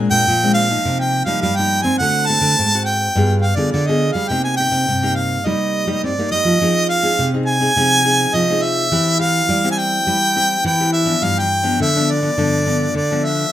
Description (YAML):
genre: samba and choro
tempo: 104 BPM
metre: 4/4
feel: straight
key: C minor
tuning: A4 = 440 Hz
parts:
  - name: nylon-string guitar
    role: accompaniment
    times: 0.0-13.5 s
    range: G2 to Ab4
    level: -22 LUFS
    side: left 3 dB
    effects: none
  - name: nylon-string guitar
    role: bass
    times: 0.0-13.4 s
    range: G2 to C4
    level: -20 LUFS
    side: equal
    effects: none
  - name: clear harmonica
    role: melody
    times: 0.1-13.5 s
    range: D5 to A5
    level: -17 LUFS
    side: right 1 dB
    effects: none
room: light reverb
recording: minimal, uncompressed stereo recording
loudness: -14 LUFS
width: side -12 dB against mid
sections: 0.0-6.6 A section; 6.6-13.5 B section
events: none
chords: 0.0 Bb9; 0.9 Cm7; 2.0 D7; 3.2 G7b9; 4.3 Cm7; 6.6 Fm7; 8.9 C/E; 11.2 G7